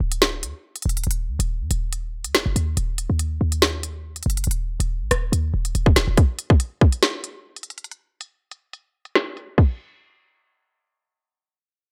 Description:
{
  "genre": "hip hop, drill",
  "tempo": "141 BPM",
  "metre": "4/4",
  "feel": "half-time",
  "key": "Eb harmonic minor",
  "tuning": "A4 = 440 Hz",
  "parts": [
    { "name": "short 808-style bass", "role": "bass", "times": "0.0-6.2 s", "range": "D1 to Gb2", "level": "-26 LUFS", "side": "equal", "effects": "none" },
    { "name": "drill drum kit", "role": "drums", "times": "0.1-9.7 s", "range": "crash cymbal, hi-hat, kick drum, rim click, snare drum", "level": "-21 LUFS", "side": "equal", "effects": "none" }
  ],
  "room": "digital ambience",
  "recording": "low-pass filter",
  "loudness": "-22 LUFS",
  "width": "mono",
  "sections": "0.0-6.2 A section; 6.2-9.6 B section; 9.6-11.9 C section",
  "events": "drum fill 5.3-6.2; filter sweep 6.2-9.6; break 7.9-9.6",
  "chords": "none",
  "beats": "0.22 0.64 | 1.07 1.49 1.92 2.35 | 2.77 3.20 3.62 4.05 | 4.47 4.90 5.32 5.75 | 6.17 6.60 7.03 7.45 | 7.88 8.30 8.73 9.15 | 9.58"
}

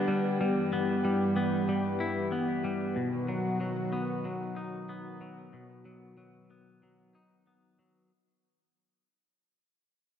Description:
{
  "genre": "rock",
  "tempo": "93 BPM",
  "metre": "4/4",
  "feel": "straight",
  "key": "unclear",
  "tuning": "A4 = 440 Hz",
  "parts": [
    { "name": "lush unison pad", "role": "sustained chords", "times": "0.0-8.1 s", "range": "G2 to G4", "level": "-33 LUFS", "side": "right 1 dB", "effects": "chorus" },
    { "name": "twangy electric guitar", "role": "arpeggios", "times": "0.0-8.1 s", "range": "B2 to E4", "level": "-31 LUFS", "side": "left 2 dB", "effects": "analog delay" }
  ],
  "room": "wet scoring stage reverb, RT60 2.0 s",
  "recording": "dark, warm production",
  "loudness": "-28 LUFS",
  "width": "side -9 dB against mid",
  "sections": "0.0-8.1 A section",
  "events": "fade-out 0.0-8.1",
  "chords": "0.4 Em/G; 3.0 B",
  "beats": "| 0.40 1.04 1.68 2.32 | 2.97 3.61 4.25 4.89 | 5.54 6.18 6.82 7.46"
}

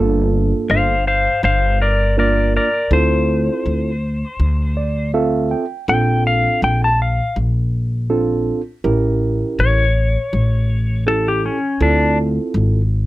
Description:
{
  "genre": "straight-eighth soul blues",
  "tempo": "81 BPM",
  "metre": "4/4",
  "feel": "swing 56% on 16ths",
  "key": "D minor",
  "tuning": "A4 = 440 Hz",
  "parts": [
    { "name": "mellow reed electric piano", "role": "accompaniment", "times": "0.0-12.8 s", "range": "Bb3 to G5", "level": "-20 LUFS", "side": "right 4 dB", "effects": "none" },
    { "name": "upright bass", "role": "bass", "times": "0.0-13.1 s", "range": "G1 to D2", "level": "-17 LUFS", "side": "equal", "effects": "none" },
    { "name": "clean lap steel guitar", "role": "melody", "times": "0.7-12.2 s", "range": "C#4 to A5", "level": "-18 LUFS", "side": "left 2 dB", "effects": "none" }
  ],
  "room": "light reverb",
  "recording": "none",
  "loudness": "-15 LUFS",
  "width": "side -17 dB against mid",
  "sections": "0.0-13.1 A section",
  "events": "reed electric piano fill 4.4-5.9",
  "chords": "0.0 Gm7; 2.9 Dm7; 5.9 Bbmaj7; 8.8 A7b9; 11.8 Dm7",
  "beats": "0.69 1.43 2.17 | 2.91 3.65 4.39 5.14 | 5.88 6.62 7.36 8.10 | 8.84 9.58 10.32 11.06 | 11.80 12.54"
}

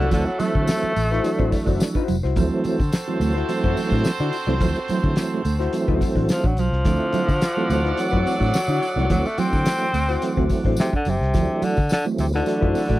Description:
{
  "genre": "funk",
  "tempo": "107 BPM",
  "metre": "4/4",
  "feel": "straight",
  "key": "D mixolydian",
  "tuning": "A4 = 440 Hz",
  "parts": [
    { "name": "breathy tenor saxophone", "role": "melody", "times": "0.0-2.1, 6.3-13.0 s", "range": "C3 to C4", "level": "-24 LUFS", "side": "equal", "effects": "none" },
    { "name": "clear horn section", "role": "second line", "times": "0.0-13.0 s", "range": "A3 to F#5", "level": "-30 LUFS", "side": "right 3 dB", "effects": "none" },
    { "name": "hollow-body jazz guitar", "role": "accompaniment", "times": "0.0-13.0 s", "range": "E4 to D5", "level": "-28 LUFS", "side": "left 9 dB", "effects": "none" },
    { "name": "mellow electric guitar", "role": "riff", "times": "0.0-13.0 s", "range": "F3 to D4", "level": "-30 LUFS", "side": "right 6 dB", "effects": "spring reverb" },
    { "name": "tonewheel organ", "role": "stabs", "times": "0.0-13.0 s", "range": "D3 to E4", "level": "-24 LUFS", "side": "right 2 dB", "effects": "overdrive, chorus vibrato, slow rotary speaker" },
    { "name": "vintage muted fingered electric bass", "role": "bass", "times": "0.0-13.0 s", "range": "F1 to D3", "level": "-23 LUFS", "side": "equal", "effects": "none" },
    { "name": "cloth-damped thuddy drum kit", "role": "drums", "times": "0.0-13.0 s", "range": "hi-hat, kick drum, snare drum", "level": "-23 LUFS", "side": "equal", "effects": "none" },
    { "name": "tambourine", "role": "percussion", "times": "0.1-13.0 s", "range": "none", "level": "-41 LUFS", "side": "left 4 dB", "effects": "none" }
  ],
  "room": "little or no reverb",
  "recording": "dry, close 1970s-style studio recording",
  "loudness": "-19 LUFS",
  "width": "side -16 dB against mid",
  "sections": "0.0-13.0 A section",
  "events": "none",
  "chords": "0.0 D9",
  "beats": "| 0.12 0.68 1.24 1.80 | 2.37 2.93 3.49 4.05 | 4.61 5.17 5.73 6.29 | 6.86 7.42 7.98 8.54 | 9.10 9.66 10.22 10.78 | 11.35 11.91 12.47"
}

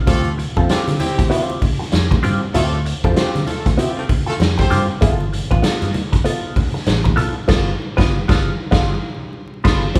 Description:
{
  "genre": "funk",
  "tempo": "97 BPM",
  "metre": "4/4",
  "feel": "swing 60% on 16ths",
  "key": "unclear",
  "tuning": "A4 = 440 Hz",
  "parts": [
    { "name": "warm horn section", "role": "second line", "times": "0.1-4.8 s", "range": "A3 to C5", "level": "-27 LUFS", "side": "equal", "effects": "none" },
    { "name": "vintage hollow-body jazz guitar", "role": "accompaniment", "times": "0.1-10.0 s", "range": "B3 to B4", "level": "-24 LUFS", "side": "equal", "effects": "wah" },
    { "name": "vintage muted fingered electric bass", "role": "bass", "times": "0.1-10.0 s", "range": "G1 to D3", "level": "-24 LUFS", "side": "equal", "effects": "none" },
    { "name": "raw garage drum kit", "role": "drums", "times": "0.1-10.0 s", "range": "crash cymbal, hi-hat, kick drum, snare drum", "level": "-21 LUFS", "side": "equal", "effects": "none" },
    { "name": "congas", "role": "percussion", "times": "0.1-10.0 s", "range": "none", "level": "-29 LUFS", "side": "equal", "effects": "none" }
  ],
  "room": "moderate large studio reverb, RT60 1.1 s",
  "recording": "band playing live in one room, vinyl crackle",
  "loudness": "-18 LUFS",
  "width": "mono",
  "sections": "0.0-10.0 A section",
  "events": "band accent 7.5-10.0; silent gap 9.3-10.0",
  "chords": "0.1 Dm11; 5.0 G9",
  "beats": "| 0.07 0.69 1.31 1.93 | 2.54 3.16 3.78 4.40 | 5.02 5.64 6.25 6.87 | 7.49 8.11 8.72 9.34 | 9.96"
}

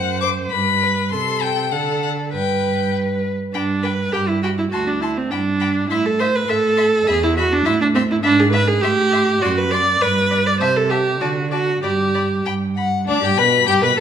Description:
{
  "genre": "quick classical-period movement for string quartet",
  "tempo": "101 BPM",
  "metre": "2/4",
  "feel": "straight",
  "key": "G major",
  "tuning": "A4 = 438 Hz",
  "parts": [
    { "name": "rich violin", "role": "melody", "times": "0.0-14.0 s", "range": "D5 to D6", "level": "-23 LUFS", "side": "left 10 dB", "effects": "none" },
    { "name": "rich viola", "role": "accompaniment", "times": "0.0-14.0 s", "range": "C4 to D5", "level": "-19 LUFS", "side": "right 2 dB", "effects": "none" },
    { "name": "dark cello", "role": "bass", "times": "0.0-14.0 s", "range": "D2 to D3", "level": "-22 LUFS", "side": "right 4 dB", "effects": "none" },
    { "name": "rich violin", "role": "second line", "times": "0.2-14.0 s", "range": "D4 to A5", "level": "-25 LUFS", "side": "left 3 dB", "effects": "none" }
  ],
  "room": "moderate recital hall reverb, RT60 1.4 s",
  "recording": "minimal, uncompressed stereo recording",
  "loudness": "-16 LUFS",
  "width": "side -8 dB against mid",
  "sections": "0.0-3.5 A section; 3.5-13.1 B section",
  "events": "none",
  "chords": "0.0 D7/F# (rootless); 0.5 G; 1.1 Am/C; 1.7 D; 2.3 G; 4.7 D5; 5.3 G5; 5.9 Am; 7.1 E5; 7.7 A5; 8.2 E/G# (rootless); 8.8 Am; 9.4 D7/F#; 10.0 G; 10.6 Am/C; 11.2 D; 11.8 N.C.; 13.1 G",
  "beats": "0.52 | 1.12 1.72 | 2.33 2.94 | 3.55 4.14 | 4.73 5.32 | 5.91 6.49 | 7.08 7.66 | 8.24 8.83 | 9.42 10.01 | 10.61 11.21 | 11.83 12.46 | 13.08 13.68"
}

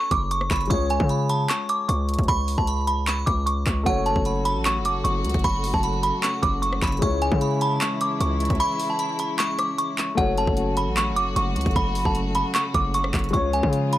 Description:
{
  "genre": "hip hop, trap",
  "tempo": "152 BPM",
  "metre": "4/4",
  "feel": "half-time",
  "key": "F# minor",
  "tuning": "A4 = 439 Hz",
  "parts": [
    { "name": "delicate synth tine bell", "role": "melody", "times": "0.0-14.0 s", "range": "F#5 to D6", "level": "-25 LUFS", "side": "right 1 dB", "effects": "chorus, low-pass filter, tape echo" },
    { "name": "glassy synth bell", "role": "second line", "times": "0.0-10.1 s", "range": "A5 to C#6", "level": "-32 LUFS", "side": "right 3 dB", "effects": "chorus, tape echo" },
    { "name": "dark concert grand piano", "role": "accompaniment", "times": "0.0-14.0 s", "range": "G#3 to C#5", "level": "-30 LUFS", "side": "left 4 dB", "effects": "low-pass filter" },
    { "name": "distorted 808-style bass", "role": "bass", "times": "0.1-14.0 s", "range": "F#1 to C#3", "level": "-25 LUFS", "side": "equal", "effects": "distortion, transformer saturation" },
    { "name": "trap drum kit", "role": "drums", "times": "0.1-14.0 s", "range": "handclaps, hi-hat, kick drum, rim click", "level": "-27 LUFS", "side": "equal", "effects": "overdrive" },
    { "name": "warm chamber string section", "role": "sustained chords", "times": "3.9-14.0 s", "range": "C#3 to F#4", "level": "-30 LUFS", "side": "equal", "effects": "none" }
  ],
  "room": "little or no reverb",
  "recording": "dry, gritty hardware recording, transformer saturation",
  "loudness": "-20 LUFS",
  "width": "side -14 dB against mid",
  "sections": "0.0-10.2 A section; 10.2-14.0 A section",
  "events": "break 8.6-10.2",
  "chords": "0.0 F#m; 0.7 C#; 3.9 F#m; 7.0 C#m; 10.2 F#m; 13.3 C#",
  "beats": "0.31 | 0.70 1.10 1.50 1.89 | 2.28 2.68 3.07 3.47 | 3.86 4.26 4.65 5.05 | 5.44 5.84 6.23 6.63 | 7.02 7.42 7.81 8.21 | 8.60 8.99 9.39 9.78 | 10.18 10.57 10.97 11.36 | 11.76 12.15 12.55 12.94 | 13.34 13.73"
}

